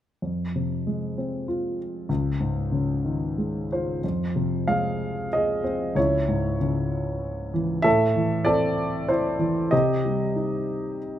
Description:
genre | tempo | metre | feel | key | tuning
classical, lyrical solo piano | 95 BPM | 3/4 | uneven beats, rubato | F minor | A4 = 444 Hz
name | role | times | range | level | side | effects
dark grand piano | solo | 0.2-11.2 s | Db2 to F5 | -22 LUFS | equal | none
room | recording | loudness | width
light reverb | close, detailed microphones | -22 LUFS | side -11 dB against mid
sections
0.2-4.0 A section; 4.0-11.2 B section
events
none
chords
0.2 Fm; 2.1 Dbsus2; 4.0 Fm; 6.0 Dbm; 7.9 Am; 9.7 Cm

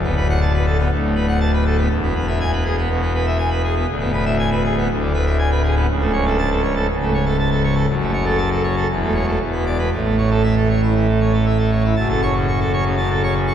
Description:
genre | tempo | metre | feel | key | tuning
classical, organ toccata | 120 BPM | 4/4 | straight | A major | A4 = 438 Hz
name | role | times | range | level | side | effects
pipe organ, full organ | solo | 0.0-13.5 s | C#1 to C#6 | -16 LUFS | equal | none
room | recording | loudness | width
wet cathedral reverb, RT60 4.8 s | heard from further back in the room | -16 LUFS | side -9 dB against mid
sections
0.0-12.0 A section; 12.0-13.5 B section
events
none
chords
0.0 Bm7/D; 1.9 E; 3.9 E7/D; 5.9 A/C#; 7.9 F#m; 8.9 A/E; 9.4 E5; 9.9 A; 12.0 F#m

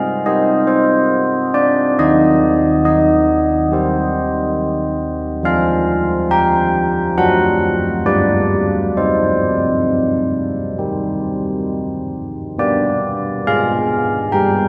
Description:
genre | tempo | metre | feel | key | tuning
classical, tune for church bells | 68 BPM | 4/4 | uneven beats | C minor | A4 = 440 Hz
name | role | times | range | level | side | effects
carillon bells | solo | 0.0-14.7 s | Eb3 to G5 | -16 LUFS | equal | none
room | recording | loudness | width
wet cathedral reverb, RT60 4.9 s | recorded in a church or concert hall | -16 LUFS | mono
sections
0.0-12.6 A section; 12.6-14.7 B section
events
none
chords
0.0 Cm; 2.0 Cm/Eb; 5.5 G7sus4/F; 7.2 D7/F#; 8.0 G7; 8.9 Cm; 12.6 G

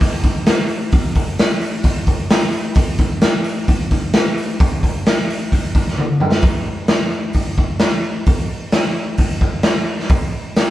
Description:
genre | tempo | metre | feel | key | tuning
rock | 131 BPM | 4/4 | straight | none | none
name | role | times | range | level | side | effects
raw garage drum kit | drums | 0.0-10.7 s | hi-hat, kick drum, snare drum, toms | -15 LUFS | equal | none
room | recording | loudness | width
light reverb | band playing live in one room | -15 LUFS | side -14 dB against mid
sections
0.0-6.4 A section; 6.4-10.7 B section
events
drum fill 6.0-6.4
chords
none

